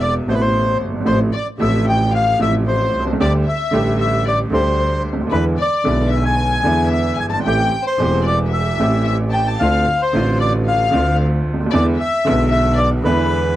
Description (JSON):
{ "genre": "tango", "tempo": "113 BPM", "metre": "4/4", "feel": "rubato", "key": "A minor", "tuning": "A4 = 441 Hz", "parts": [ { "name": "bandoneon", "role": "melody", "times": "0.0-13.5 s", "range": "B4 to A5", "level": "-19 LUFS", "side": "left 1 dB", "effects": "none" }, { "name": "warm studio violin section", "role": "second line", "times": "0.0-13.5 s", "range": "B4 to A5", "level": "-26 LUFS", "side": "left 9 dB", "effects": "none" }, { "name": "bright upright piano", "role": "accompaniment", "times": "0.0-13.6 s", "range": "E1 to G4", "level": "-19 LUFS", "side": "right 1 dB", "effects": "none" }, { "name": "clear double bass", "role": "bass", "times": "0.0-13.6 s", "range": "E1 to E2", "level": "-20 LUFS", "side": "equal", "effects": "none" } ], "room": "small room ambience", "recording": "dry, close 1970s-style studio recording", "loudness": "-15 LUFS", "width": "side -14 dB against mid", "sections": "0.0-13.6 A section", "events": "none", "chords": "0.0 Amadd9; 1.1 Fmaj7/A; 3.2 Dsus4; 5.3 E7; 7.5 Am7; 9.6 Dm7; 11.7 E7" }